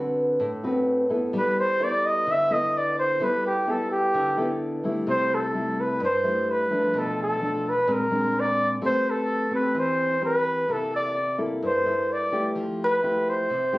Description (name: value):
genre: bossa nova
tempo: 128 BPM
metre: 4/4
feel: straight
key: G major, C major from 5.1 s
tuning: A4 = 439 Hz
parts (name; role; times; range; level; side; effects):
- nylon-string guitar; accompaniment; 0.0-13.8 s; G2 to B4; -26 LUFS; equal; none
- mellow flugelhorn; melody; 1.4-13.8 s; G4 to E5; -23 LUFS; equal; none
room: moderate studio reverb, RT60 0.6 s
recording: recorded on a phone in the room, club reverb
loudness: -22 LUFS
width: side -19 dB against mid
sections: 0.0-5.1 A section; 5.1-13.8 B section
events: flugelhorn solo 0.0-5.1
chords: 0.0 D13; 1.3 G69; 5.1 C6; 6.9 Bm7b5; 7.9 Bb9; 8.8 Am9; 10.7 C13; 12.6 Fmaj9